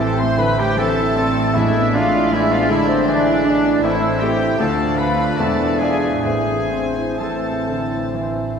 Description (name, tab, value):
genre	classical, romantic movement for piano and orchestra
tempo	62-80 BPM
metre	3/4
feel	rubato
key	A minor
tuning	A4 = 440 Hz
part	bright grand piano	melody	0.0-8.6 s	D2 to D5	-22 LUFS	left 1 dB	none
part	warm symphonic violin section	melody	0.0-8.6 s	C5 to D5	-31 LUFS	left 4 dB	none
part	clear clarinet	second line	0.0-8.6 s	C4 to D4	-31 LUFS	equal	none
part	clear oboe	second line	0.0-8.1 s	C4 to C5	-28 LUFS	right 1 dB	none
part	concert flute	second line	0.0-8.6 s	C5 to F5	-28 LUFS	left 2 dB	none
part	warm symphonic violin section	second line	0.0-8.1 s	C5 to C6	-28 LUFS	left 3 dB	none
part	dark symphonic viola section	accompaniment	0.0-8.6 s	E3 to F4	-28 LUFS	equal	none
part	mellow bassoon	accompaniment	0.0-8.6 s	E3 to A3	-27 LUFS	equal	none
part	mellow French horn section	sustained chords	0.0-8.6 s	E3 to D4	-25 LUFS	right 1 dB	none
part	mellow trumpet section	stabs	0.0-8.1 s	C4 to C5	-23 LUFS	equal	none
part	warm symphonic cello section	bass	0.0-8.6 s	D2 to A2	-28 LUFS	right 4 dB	none
part	warm symphonic double bass section	bass	0.0-8.6 s	E1 to D2	-29 LUFS	right 4 dB	none
part	timpani	percussion	1.6-2.7, 6.3-7.6 s	A2	-31 LUFS	right 1 dB	none
room	wet church reverb, RT60 2.9 s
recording	recorded in a church or concert hall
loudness	-15 LUFS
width	side -6 dB against mid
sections	0.0-8.6 A section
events	none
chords	0.0 Am; 1.6 E7/A; 3.8 Am; 4.6 Dm; 5.4 E7b9; 6.2 Am